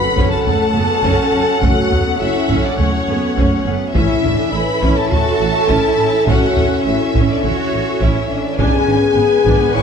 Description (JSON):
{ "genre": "cinematic, epic orchestral film score", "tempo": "103 BPM", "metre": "4/4", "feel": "straight", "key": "F# minor", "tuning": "A4 = 440 Hz", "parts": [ { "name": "rich chamber violin section", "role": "melody", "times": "0.0-9.8 s", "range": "E5 to G#5", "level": "-25 LUFS", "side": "left 6 dB", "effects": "none" }, { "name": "warm symphonic violin section", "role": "second line", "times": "0.0-9.8 s", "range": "C#5 to C#6", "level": "-22 LUFS", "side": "left 2 dB", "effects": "none" }, { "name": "warm symphonic viola section", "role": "accompaniment", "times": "0.0-9.8 s", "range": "A3 to B4", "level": "-22 LUFS", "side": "right 1 dB", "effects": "none" }, { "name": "dark French horn section", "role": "sustained chords", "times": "0.0-9.8 s", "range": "C#4 to C#5", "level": "-19 LUFS", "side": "left 3 dB", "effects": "none" }, { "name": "warm trombone section", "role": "sustained chords", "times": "0.0-9.8 s", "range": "D3 to C#4", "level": "-25 LUFS", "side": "right 4 dB", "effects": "none" }, { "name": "impact", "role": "sound effects", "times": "0.0-1.6 s", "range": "none", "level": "barely audible", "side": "none", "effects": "none" }, { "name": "rich symphonic double bass section", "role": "bass", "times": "0.2-9.8 s", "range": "F#1 to A1", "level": "-22 LUFS", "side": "right 4 dB", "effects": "none" }, { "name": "taiko ensemble", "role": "drums", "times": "0.2-9.8 s", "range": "none", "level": "-20 LUFS", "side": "equal", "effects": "none" }, { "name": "rich symphonic cello section", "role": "bass", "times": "0.5-9.8 s", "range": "A3 to F#4", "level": "-22 LUFS", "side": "right 2 dB", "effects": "none" } ], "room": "wet scoring stage reverb, RT60 1.7 s", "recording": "dark, warm production", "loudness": "-13 LUFS", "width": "side -6 dB against mid", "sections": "0.0-9.8 A section", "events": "impact 0.0-1.6", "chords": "0.0 F#m; 3.9 A; 8.6 G#dim" }